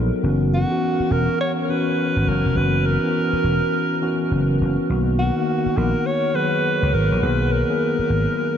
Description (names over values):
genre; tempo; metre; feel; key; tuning
R&B, new jack swing; 103 BPM; 4/4; swing 62% on 16ths; unclear; A4 = 441 Hz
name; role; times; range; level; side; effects
mellow tine electric piano; accompaniment; 0.0-8.6 s; D#3 to A#4; -22 LUFS; left 2 dB; medium stereo tremolo
vintage slap bass; bass; 0.0-8.2 s; E1 to C#2; -20 LUFS; equal; none
bright alto saxophone; melody; 0.5-8.6 s; F#4 to C#5; -23 LUFS; right 1 dB; ping-pong delay
room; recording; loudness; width
wet huge ambient reverb, RT60 8.1 s; dreamy mix soaked in reverb, nothing above 7.5 kHz; -18 LUFS; side -8 dB against mid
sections
0.0-8.6 A section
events
none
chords
0.2 F#7sus4; 4.9 Bmaj7